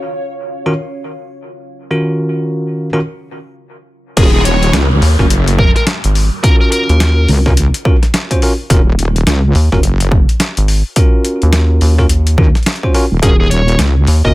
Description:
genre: glitch hop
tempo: 106 BPM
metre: 4/4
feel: swing 61% on 16ths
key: Eb minor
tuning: A4 = 439 Hz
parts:
  - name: deep dark ambient pad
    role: texture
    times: 0.0-3.6 s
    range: Db4 to F5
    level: -28 LUFS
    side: right 1 dB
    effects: chorus, built-in reverb, sidechain pumping
  - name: bell-like tine electric piano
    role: stabs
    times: 0.7-14.3 s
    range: Eb3 to C5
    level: -18 LUFS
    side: equal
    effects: sidechain pumping, dub echo
  - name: smooth overdriven lead guitar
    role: melody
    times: 4.2-7.3, 13.2-14.3 s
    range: Ab4 to Eb5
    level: -19 LUFS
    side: equal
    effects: vintage 12-bit sampler grit, dub echo
  - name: wobble bass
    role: bass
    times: 4.2-14.3 s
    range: Eb1 to Eb2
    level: -12 LUFS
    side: equal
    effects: chorus
  - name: boom bap sampler-style drum kit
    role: drums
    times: 4.2-14.3 s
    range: crash cymbal, hi-hat, snare drum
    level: -18 LUFS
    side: left 1 dB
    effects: small room ambience
  - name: electronic kick drum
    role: drums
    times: 4.2-14.3 s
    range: none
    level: -12 LUFS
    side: equal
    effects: small room ambience
  - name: downlifter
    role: sound effects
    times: 4.2-8.7 s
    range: none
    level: -22 LUFS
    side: equal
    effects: none
  - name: rubbery square bass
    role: bass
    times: 5.0-14.2 s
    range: Ab1 to Eb2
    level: -10 LUFS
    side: equal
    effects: tube saturation
room: little or no reverb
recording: none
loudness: -10 LUFS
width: side -18 dB against mid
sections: 0.0-4.2 A section; 4.2-14.3 B section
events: drop 4.2-14.3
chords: 0.0 Ebm9

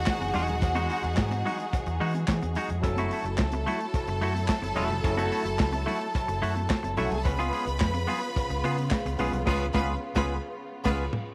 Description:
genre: disco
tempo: 108 BPM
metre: 4/4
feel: straight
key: F# dorian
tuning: A4 = 440 Hz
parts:
  - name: clear studio violin section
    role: second line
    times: 0.0-11.0 s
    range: E4 to B5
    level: -36 LUFS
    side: equal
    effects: none
  - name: warm studio string section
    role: sustained chords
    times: 0.0-11.3 s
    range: C#3 to A4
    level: -38 LUFS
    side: equal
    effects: none
  - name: overdriven fingered electric bass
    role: bass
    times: 0.0-11.0 s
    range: D#1 to E3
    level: -33 LUFS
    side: equal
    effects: none
  - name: clean electric guitar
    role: accompaniment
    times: 0.1-11.1 s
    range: G#3 to G#4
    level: -36 LUFS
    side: equal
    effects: none
  - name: warm soul drum kit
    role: drums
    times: 0.1-11.3 s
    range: crash cymbal, handclaps, hi-hat, kick drum, snare drum, toms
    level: -32 LUFS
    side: equal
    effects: none
  - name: congas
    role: percussion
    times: 0.1-9.5 s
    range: none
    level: -42 LUFS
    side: equal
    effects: none
  - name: cowbell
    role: percussion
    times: 0.1-9.0 s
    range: none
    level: -45 LUFS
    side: equal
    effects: none
  - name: auto-wah clav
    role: accompaniment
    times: 2.8-11.0 s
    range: F#3 to B4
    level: -36 LUFS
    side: equal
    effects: none
room: light reverb, small room reverb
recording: none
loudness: -28 LUFS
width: mono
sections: 0.0-11.3 A section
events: band accent 9.5-11.3; drum fill 10.6-11.3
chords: 0.0 Emaj9; 2.8 F#m7; 7.3 C#7

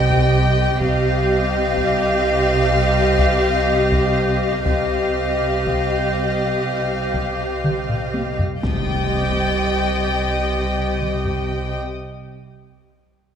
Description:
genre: cinematic, suspense film score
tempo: 62 BPM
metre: 4/4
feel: straight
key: C minor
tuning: A4 = 435 Hz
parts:
  - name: rich studio violin section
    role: melody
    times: 0.0-11.8 s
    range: F5 to G5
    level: -25 LUFS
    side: left 3 dB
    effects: none
  - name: dark chamber violin section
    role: second line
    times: 0.0-11.8 s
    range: Eb5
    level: -25 LUFS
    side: left 2 dB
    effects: none
  - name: warm studio viola section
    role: accompaniment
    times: 0.0-11.8 s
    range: G4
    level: -23 LUFS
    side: equal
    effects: none
  - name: warm chamber double bass section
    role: bass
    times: 0.0-11.8 s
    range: C2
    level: -24 LUFS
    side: right 2 dB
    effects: none
  - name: warm studio cello section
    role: bass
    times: 0.0-11.8 s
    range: C3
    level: -26 LUFS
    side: right 2 dB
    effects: none
  - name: taiko ensemble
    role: drums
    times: 0.1-11.5 s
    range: none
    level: -26 LUFS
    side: equal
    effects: none
  - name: impact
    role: sound effects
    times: 8.6-11.8 s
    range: none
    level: -28 LUFS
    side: left 1 dB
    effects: none
  - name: dark studio violin section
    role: texture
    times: 8.6-11.9 s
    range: Eb6 to A6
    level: -31 LUFS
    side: left 4 dB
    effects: none
room: moderate scoring stage reverb, RT60 2.1 s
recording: none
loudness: -17 LUFS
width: side -8 dB against mid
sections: 0.0-8.6 A section; 8.6-12.4 B section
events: drum fill 7.6-8.6; impact 8.6-12.4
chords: 0.0 Cm

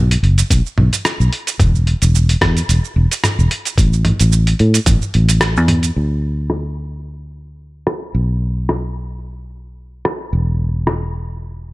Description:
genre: sunset chillout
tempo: 110 BPM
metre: 4/4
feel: swing 55% on 16ths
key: unclear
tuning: A4 = 440 Hz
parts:
  - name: fingered electric bass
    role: bass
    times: 0.0-11.7 s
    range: E1 to A2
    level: -15 LUFS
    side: equal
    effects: none
  - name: dusty soul sampler-style drum kit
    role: drums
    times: 0.1-11.0 s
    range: hi-hat, rim click, shaker, toms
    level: -19 LUFS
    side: right 1 dB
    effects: overdrive, low-pass filter on hats, small room ambience, low-pass filter on perc, low-pass filter on toms, low-pass filter on snare
  - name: electronic kick drum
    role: drums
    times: 0.5-5.0 s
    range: none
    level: -15 LUFS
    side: equal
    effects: overdrive, small room ambience
room: little or no reverb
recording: none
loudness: -14 LUFS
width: side -20 dB against mid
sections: 0.0-6.0 A section; 6.0-11.7 B section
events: none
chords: none

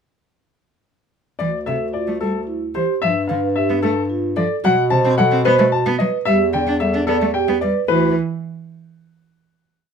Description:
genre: classical, minimalist pattern music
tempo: 111 BPM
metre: 3/4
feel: straight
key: unclear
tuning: A4 = 441 Hz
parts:
  - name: warm baby grand piano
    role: melody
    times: 1.4-8.1 s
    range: A4 to A5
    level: -21 LUFS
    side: left 7 dB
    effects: none
  - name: rich cello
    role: accompaniment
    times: 1.4-8.1 s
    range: C3 to D4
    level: -22 LUFS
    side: right 2 dB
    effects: none
  - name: warm bass clarinet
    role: bass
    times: 1.4-8.1 s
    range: D2 to B2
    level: -23 LUFS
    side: left 2 dB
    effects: none
  - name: vibraphone with soft mallets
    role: arpeggios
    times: 1.7-8.1 s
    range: E4 to D5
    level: -21 LUFS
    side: right 7 dB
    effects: none
room: light reverb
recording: none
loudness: -16 LUFS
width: side -6 dB against mid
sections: 1.4-7.9 A section; 7.9-9.5 final chord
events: none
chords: 1.4 Dsus4; 3.0 G13; 4.6 B7(no3); 6.3 Em7; 7.9 Dsus2

